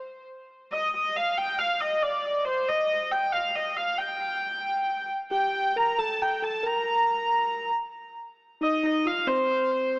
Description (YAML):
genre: medieval dance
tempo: 91 BPM (dotted quarters)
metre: 6/8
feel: straight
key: C dorian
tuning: A4 = 439 Hz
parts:
  - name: dark hurdy-gurdy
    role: melody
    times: 0.7-10.0 s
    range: C5 to Bb5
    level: -24 LUFS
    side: equal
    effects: digital delay
  - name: mellow tine electric piano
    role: second line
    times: 5.3-10.0 s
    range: C4 to Bb4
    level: -30 LUFS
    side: equal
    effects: none
room: moderate echo chamber reverb, RT60 1.9 s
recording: small speaker sound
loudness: -24 LUFS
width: side -24 dB against mid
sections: 0.1-10.0 A section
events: none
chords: none